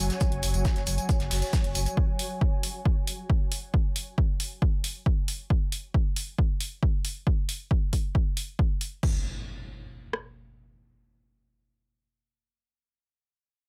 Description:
driving peak-time techno; 136 BPM; 4/4; straight; A4 = 441 Hz
saturated sub bass; bass; 0.0-1.9 s; F#1; -32 LUFS; equal; sidechain pumping, low-pass filter
swarming drone; drone; 0.0-2.0 s; F#3; -43 LUFS; equal; built-in reverb, sidechain pumping
ethereal airy pad; texture; 0.0-2.0 s; F#4 to G#5; -40 LUFS; equal; ensemble chorus, built-in reverb, sidechain pumping
punchy analog drum machine; drums; 0.1-9.1 s; crash cymbal, hi-hat, tambourine; -36 LUFS; equal; overdrive, sidechain pumping on hats, sidechain pumping on perc, sidechain pumping on cymbals
warm soul drum kit; drums; 0.1-2.0 s; hi-hat, shaker, snare drum; -42 LUFS; equal; high-pass filter on hats, high-pass filter on snare, high-pass filter on perc, high-pass filter on room
punchy analog drum machine; drums; 0.2-10.2 s; kick drum, rim click; -28 LUFS; equal; overdrive
impact; sound effects; 9.1-12.1 s; -43 LUFS; equal
little or no reverb; -28 LUFS; mono
0.0-9.0 A section; 9.0-12.6 B section
0.0 F#5; 9.0 N.C.
| 0.21 0.65 1.09 1.53 | 1.97 2.41 2.85 3.29 | 3.74 4.18 4.62 5.06 | 5.50 5.94 6.38 6.82 | 7.27 7.71 8.15 8.59 | 9.03 9.47 9.91 10.35 | 10.79 11.24 11.68

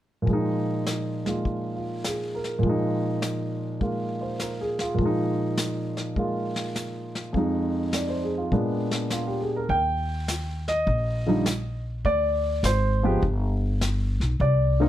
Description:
jazz piano trio; 102 BPM; 4/4; swing 67% on 8ths; A4 = 440 Hz
warm grand piano; melody; 0.2-14.9 s; F2 to G5; -25 LUFS; equal
vintage brush drum kit; drums; 0.3-14.9 s; brushed snare drum, hi-hat, kick drum, snare drum; -31 LUFS; left 1 dB
upright bass; bass; 9.7-14.9 s; G1 to Eb2; -25 LUFS; equal
light reverb; -24 LUFS; side -12 dB against mid
0.3-9.7 A section; 9.7-14.9 B section
0.3 Bb7sus4; 7.3 Fm7; 8.5 Bb7b9; 9.7 Eb; 12.1 D7(b5, no3); 13.2 G
| 0.27 0.86 1.45 2.04 | 2.63 3.22 3.81 4.40 | 4.99 5.58 6.17 6.76 | 7.34 7.93 8.52 9.11 | 9.70 10.29 10.88 11.46 | 12.05 12.64 13.23 13.81 | 14.40

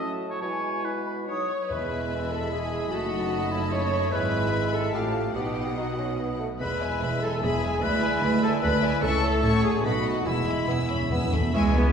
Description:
classical, dramatic, fast romantic movement for symphony orchestra; 138-150 BPM; 3/4; straight; E major; A4 = 440 Hz
clear clarinet; second line; 0.0-11.9 s; E4 to C#5; -31 LUFS; equal
clear oboe; second line; 0.0-11.9 s; B4 to F5; -36 LUFS; equal
small flute group; second line; 0.0-11.9 s; E5 to D#6; -35 LUFS; left 3 dB
warm bassoon; accompaniment; 0.0-11.9 s; A2 to D#4; -34 LUFS; right 2 dB
dark French horn section; sustained chords; 0.0-11.9 s; E3 to F4; -34 LUFS; equal
rich symphonic viola section; accompaniment; 1.3-11.7 s; E4 to E5; -34 LUFS; right 1 dB
warm symphonic violin section; melody; 1.7-11.7 s; F#5 to E6; -34 LUFS; left 4 dB
rich studio violin section; second line; 1.7-11.7 s; A4 to B5; -36 LUFS; equal
clear symphonic double bass section; bass; 1.7-11.9 s; E1 to D2; -30 LUFS; right 1 dB
rich studio cello section; bass; 1.7-11.9 s; C#2 to B3; -30 LUFS; right 1 dB
timpani; percussion; 1.7-2.3, 10.3-11.5 s; E2; -30 LUFS; equal
wet recital hall reverb, RT60 1.4 s; recorded in a church or concert hall; -23 LUFS; side -7 dB against mid
0.0-1.7 A section; 1.7-11.5 B section
timpani fill 10.3-11.5
0.0 F#m/A; 0.4 E/B; 1.3 B; 1.7 E; 2.9 B7/F#; 4.1 E/G#; 4.9 F/A; 5.4 B; 6.6 E; 7.8 E7/D; 9.0 A/C#; 9.4 A6; 9.8 B7; 10.3 E
| 0.41 0.85 1.28 | 1.70 2.11 2.51 | 2.92 3.33 3.73 | 4.13 4.53 4.94 | 5.35 5.77 6.19 | 6.61 7.02 7.42 | 7.83 8.23 8.63 | 9.03 9.44 9.84 | 10.26 10.69 11.11 | 11.54

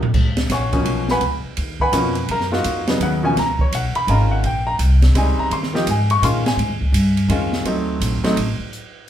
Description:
modal jazz; 168 BPM; 3/4; swing 64% on 8ths; Db mixolydian; A4 = 441 Hz
upright bass; bass; 0.0-8.6 s; Ab1 to Bb2; -19 LUFS; equal
open jazz drum kit; drums; 0.0-8.8 s; crash cymbal, hi-hat, kick drum, ride cymbal, snare drum, toms; -24 LUFS; right 1 dB
clear baby grand piano; accompaniment; 0.5-8.4 s; Cb3 to Db6; -20 LUFS; equal
wet club reverb, RT60 0.7 s; heard from further back in the room; -16 LUFS; side -10 dB against mid
0.1-8.7 A section
0.1 Db9sus4; 4.4 Eb9sus4; 7.6 D7b9
| 0.14 0.49 0.85 | 1.21 1.57 1.93 | 2.29 2.65 3.00 | 3.36 3.72 4.08 | 4.43 4.79 5.15 | 5.51 5.86 6.22 | 6.58 6.93 7.29 | 7.65 8.00 8.36 | 8.72

